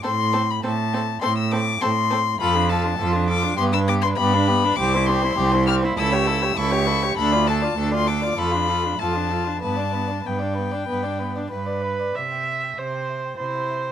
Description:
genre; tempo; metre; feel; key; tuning
quick classical-period movement for string quartet; 92-103 BPM; 4/4; rubato; C major; A4 = 441 Hz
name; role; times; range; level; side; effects
rich violin; melody; 0.0-13.9 s; E5 to F6; -24 LUFS; left 8 dB; none
warm violin; second line; 0.0-13.9 s; E4 to D5; -28 LUFS; left 3 dB; none
rich viola; accompaniment; 0.0-13.9 s; B3 to E5; -26 LUFS; right 2 dB; none
rich cello; bass; 0.1-13.9 s; C2 to C3; -24 LUFS; right 4 dB; none
room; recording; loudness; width
little or no reverb; close, detailed microphones; -19 LUFS; side -9 dB against mid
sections
0.0-12.2 A section; 12.2-13.9 B section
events
none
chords
0.1 Am; 2.4 Dm/F; 3.6 G; 4.8 C; 6.0 A7/C#; 7.2 Dm; 8.4 Dm/F; 9.6 G; 12.2 C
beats
| 0.05 0.64 1.22 1.81 | 2.40 2.99 3.58 4.18 | 4.78 5.38 5.97 6.57 | 7.18 7.78 8.38 9.00 | 9.62 10.26 10.89 11.52 | 12.16 12.77 13.37

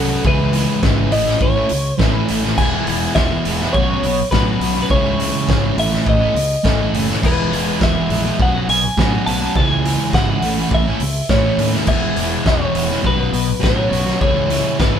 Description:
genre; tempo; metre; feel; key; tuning
indie rock; 103 BPM; 4/4; straight; E major; A4 = 440 Hz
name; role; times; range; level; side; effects
twelve-string electric guitar; melody; 0.0-15.0 s; A4 to A5; -21 LUFS; equal; none
sludgy distorted guitar; riff; 0.0-15.0 s; E2 to F#4; -18 LUFS; equal; overdrive
growling fingered electric bass; bass; 0.0-15.0 s; E1 to A2; -23 LUFS; equal; overdrive
loose indie drum kit; drums; 0.2-14.9 s; crash cymbal, hi-hat, kick drum, snare drum; -20 LUFS; equal; none
room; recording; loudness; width
moderate studio reverb, RT60 0.5 s; band playing live in one room; -14 LUFS; side -8 dB against mid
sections
0.0-15.0 A section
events
none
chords
0.3 C#m7; 1.1 A; 2.6 E; 3.7 Bsus2; 4.9 C#m; 5.8 A6; 7.2 E; 8.4 Bsus2; 9.6 C#m; 10.4 A; 11.9 E; 13.1 Bsus2; 14.2 C#m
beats
| 0.25 0.83 1.42 2.00 | 2.58 3.16 3.74 4.33 | 4.91 5.49 6.07 6.65 | 7.23 7.81 8.39 8.97 | 9.56 10.14 10.72 11.30 | 11.89 12.47 13.05 13.64 | 14.22 14.81

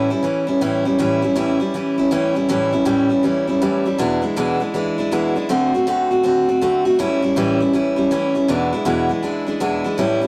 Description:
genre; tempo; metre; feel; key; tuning
rock; 160 BPM; 4/4; swing 64% on 8ths; A mixolydian; A4 = 441 Hz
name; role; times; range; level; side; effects
picked steel-string acoustic guitar; solo; 0.0-10.3 s; E2 to F#4; -19 LUFS; equal; none
room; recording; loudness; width
light reverb; rough rehearsal-room recording, tube saturation; -19 LUFS; mono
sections
0.0-10.0 A section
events
none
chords
0.0 A7; 4.0 E7; 5.5 D7; 7.0 A7; 8.5 E7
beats
0.23 0.61 | 0.99 1.36 1.74 2.11 | 2.49 2.86 3.24 3.61 | 3.99 4.36 4.74 5.11 | 5.49 5.86 6.24 6.61 | 6.99 7.36 7.73 8.11 | 8.48 8.86 9.23 9.61 | 9.98

